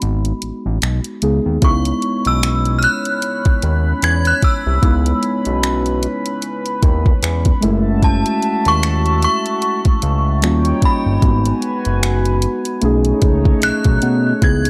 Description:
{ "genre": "contemporary R&B", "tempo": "75 BPM", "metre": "4/4", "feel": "swing 58% on 16ths", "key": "C# minor", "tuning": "A4 = 442 Hz", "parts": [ { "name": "synth chime", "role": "melody", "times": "0.0-14.7 s", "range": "A5 to G#6", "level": "-23 LUFS", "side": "equal", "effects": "ensemble chorus, tremolo, analog delay" }, { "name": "muted felt-like synth keys", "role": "accompaniment", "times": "0.0-14.7 s", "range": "G3 to G#4", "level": "-23 LUFS", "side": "equal", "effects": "chorus" }, { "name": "fat analog bass", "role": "bass", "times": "0.0-14.7 s", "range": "F#1 to B2", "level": "-20 LUFS", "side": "equal", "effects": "transformer saturation" }, { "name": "smooth R&B drum kit", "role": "drums", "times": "0.0-14.7 s", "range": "finger snaps, hi-hat, kick drum", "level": "-18 LUFS", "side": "equal", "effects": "none" }, { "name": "chorused pulse-width pad", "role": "sustained chords", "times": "1.6-14.7 s", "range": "E3 to B5", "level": "-27 LUFS", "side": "equal", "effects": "sidechain pumping" } ], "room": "digital ambience", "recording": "dry, gritty hardware recording", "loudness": "-16 LUFS", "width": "mono", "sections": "0.0-14.4 A section", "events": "break 0.0-1.6", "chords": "0.0 G#m7; 1.6 C#m7; 7.6 F#m7; 10.4 D#7; 11.2 G#m7; 12.8 B13" }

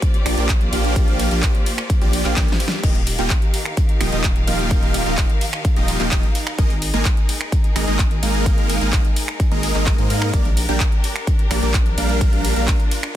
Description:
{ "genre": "EDM, festival progressive house", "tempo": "128 BPM", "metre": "4/4", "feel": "straight", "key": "Eb major", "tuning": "A4 = 438 Hz", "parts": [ { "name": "clear studio string section", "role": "sustained chords", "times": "0.0-13.2 s", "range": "Eb3 to F5", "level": "-29 LUFS", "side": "left 2 dB", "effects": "sidechain pumping" }, { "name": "big-room dance drum kit", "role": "drums", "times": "0.0-13.1 s", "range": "crash cymbal, finger snaps, handclaps, hi-hat, ride cymbal, snare drum", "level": "-25 LUFS", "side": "equal", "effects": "soft clipping on snare" }, { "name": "electronic kick drum", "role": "drums", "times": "0.0-12.8 s", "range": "none", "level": "-18 LUFS", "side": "equal", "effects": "none" }, { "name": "big supersaw lead", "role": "riff", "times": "0.3-12.8 s", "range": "F3 to Ab5", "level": "-23 LUFS", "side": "right 1 dB", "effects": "sidechain pumping, tape echo" }, { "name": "saturated sub bass", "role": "bass", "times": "0.3-12.7 s", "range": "Eb1 to Ab2", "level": "-23 LUFS", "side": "equal", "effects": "sidechain pumping" } ], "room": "digital ambience", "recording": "dense, heavily limited modern master", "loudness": "-16 LUFS", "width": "side -12 dB against mid", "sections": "0.0-13.2 A section", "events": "drum fill 2.4-2.8", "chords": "0.0 Bb6; 2.8 Ebadd9; 6.6 Absus2; 10.3 Gm/Bb" }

